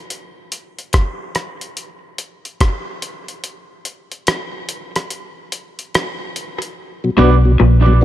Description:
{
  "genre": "dub reggae",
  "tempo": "72 BPM",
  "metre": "4/4",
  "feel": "swing 63% on 16ths",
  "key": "B harmonic minor",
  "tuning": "A4 = 440 Hz",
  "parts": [
    { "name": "dusty soul sampler-style drum kit", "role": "drums", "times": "0.1-6.8 s", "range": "hi-hat, kick drum, rim click", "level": "-20 LUFS", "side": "equal", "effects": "dub echo" },
    { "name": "mellow tonewheel organ", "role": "accompaniment", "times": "7.0-8.0 s", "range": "B2 to F#4", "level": "-18 LUFS", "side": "left 2 dB", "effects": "slow rotary speaker" },
    { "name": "electric guitar at the edge of break-up", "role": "accompaniment", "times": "7.2-7.3 s", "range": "D4 to D5", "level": "-17 LUFS", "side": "right 6 dB", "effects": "dub echo" },
    { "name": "electric guitar through a small old amp", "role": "riff", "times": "7.2-7.8 s", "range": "A#2 to B2", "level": "-17 LUFS", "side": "left 5 dB", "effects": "tremolo, dub echo" },
    { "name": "vintage muted fingered electric bass", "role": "bass", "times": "7.2-8.0 s", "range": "A#1 to B1", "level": "-10 LUFS", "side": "equal", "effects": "none" }
  ],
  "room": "light reverb",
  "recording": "none",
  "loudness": "-15 LUFS",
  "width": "side -13 dB against mid",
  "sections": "0.0-6.8 A section; 6.8-8.0 B section",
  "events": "break 0.0-6.8; kick muted 3.4-6.8",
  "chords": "0.0 N.C.; 6.8 Bm",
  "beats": "| 0.11 0.94 1.77 2.61 | 3.44 4.27 5.11 5.94 | 6.77 7.61"
}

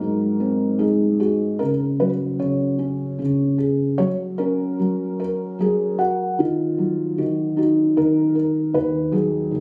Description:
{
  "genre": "children's music",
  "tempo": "75 BPM",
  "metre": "3/4",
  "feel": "rubato",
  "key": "F# major",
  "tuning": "A4 = 440 Hz",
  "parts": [
    { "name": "felt-muted upright piano", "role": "solo", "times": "0.0-9.6 s", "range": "D#2 to F#5", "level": "-21 LUFS", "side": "equal", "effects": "none" }
  ],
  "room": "moderate recital hall reverb, RT60 1.6 s",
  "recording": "recorded on a phone in the room, studio reverb, compression",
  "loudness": "-21 LUFS",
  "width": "mono",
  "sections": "0.0-9.6 A section",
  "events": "none",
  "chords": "0.0 G#7; 1.6 F#5/C#; 3.2 C#5; 4.0 F#; 6.4 D#m; 8.7 B/D#",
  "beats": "0.02 0.80 | 1.60 2.40 3.19 | 4.00 4.80 5.60 | 6.40 7.19 7.97 | 8.75 9.53"
}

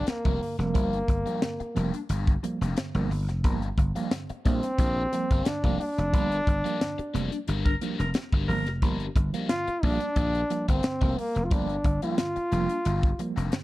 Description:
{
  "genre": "funk",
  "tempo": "89 BPM",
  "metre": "4/4",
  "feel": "straight",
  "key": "G minor",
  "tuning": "A4 = 440 Hz",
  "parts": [
    { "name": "bright trombone", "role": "melody", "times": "0.0-13.3 s", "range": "Bb3 to F4", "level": "-29 LUFS", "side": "equal", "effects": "none" },
    { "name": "crunchy overdriven guitar", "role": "accompaniment", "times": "0.0-13.6 s", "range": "D4 to F5", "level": "-38 LUFS", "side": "left 8 dB", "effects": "phaser" },
    { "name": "dry thumbed slap bass", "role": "bass", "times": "0.0-13.5 s", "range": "F1 to Bb1", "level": "-28 LUFS", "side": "equal", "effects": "none" },
    { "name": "tight funk drum kit", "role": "drums", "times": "0.1-13.6 s", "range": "hi-hat, kick drum, snare drum", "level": "-26 LUFS", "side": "equal", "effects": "none" },
    { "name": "mellow tine electric piano", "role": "stabs", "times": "0.2-13.6 s", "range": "G2 to Bb3", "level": "-33 LUFS", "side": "right 4 dB", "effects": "medium stereo tremolo" },
    { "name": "raspy tenor saxophone", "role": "second line", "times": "7.6-8.7 s", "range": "Bb4", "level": "-34 LUFS", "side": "equal", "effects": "none" }
  ],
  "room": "studio reverb",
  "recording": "dark, warm production",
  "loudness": "-24 LUFS",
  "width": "side -17 dB against mid",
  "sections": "0.0-13.6 A section",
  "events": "band accent 6.1-8.8",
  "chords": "0.0 Gm7",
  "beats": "0.08 | 0.75 1.42 2.10 2.77 | 3.44 4.12 4.79 5.46 | 6.13 6.81 7.48 8.15 | 8.82 9.50 10.17 10.84 | 11.52 12.19 12.86 13.53"
}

